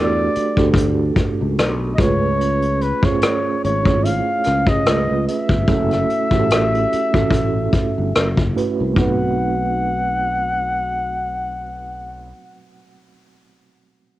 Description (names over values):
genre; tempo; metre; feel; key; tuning
R&B, neo-soul; 73 BPM; 4/4; swing 55% on 16ths; unclear; A4 = 440 Hz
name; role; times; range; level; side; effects
warm flugelhorn; melody; 0.0-12.3 s; B4 to F#5; -22 LUFS; left 1 dB; cassette tape, plate reverb
mellow reed electric piano; accompaniment; 0.0-14.2 s; A3 to C#5; -22 LUFS; right 5 dB; fast tremolo, cassette tape
sustaining fretless electric bass; bass; 0.0-12.3 s; F#1 to C#3; -22 LUFS; left 1 dB; wide subtle chorus
vintage brush drum kit; drums; 0.4-9.2 s; hi-hat, kick drum, rim click; -19 LUFS; left 1 dB; none
room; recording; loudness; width
moderate booth ambience, RT60 0.2 s; home recording on cassette; -16 LUFS; side -15 dB against mid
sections
0.0-9.0 A section; 9.0-12.3 B section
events
none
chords
0.0 Em11; 2.0 C#7b13; 5.7 F#m7; 9.0 B7b9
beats
0.74 1.57 | 2.39 3.21 4.03 4.85 | 5.68 6.50 7.32 8.14 | 8.96 9.79 10.61 11.43